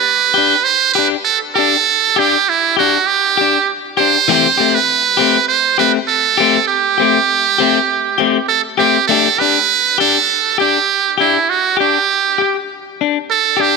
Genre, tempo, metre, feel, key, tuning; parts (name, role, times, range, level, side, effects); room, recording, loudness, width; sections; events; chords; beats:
highlife; 100 BPM; 4/4; straight; G major; A4 = 441 Hz
trumpet with metal mute; melody; 0.0-13.8 s; E4 to C5; -13 LUFS; right 8 dB
electric guitar at the edge of break-up; accompaniment; 0.3-13.8 s; E3 to G4; -17 LUFS; left 14 dB
moderate plate reverb, RT60 3.0 s; 1960s-style stereo with parts hard left and right; -11 LUFS; side -4 dB against mid
0.0-9.1 A section; 9.1-13.8 B section
0.0 G5; 4.3 Am7; 9.1 Gsus2
0.05 0.65 1.26 | 1.86 2.47 3.07 3.67 | 4.28 4.88 5.48 6.08 | 6.68 7.28 7.88 8.48 | 9.08 9.68 10.28 10.88 | 11.48 12.07 12.67 13.27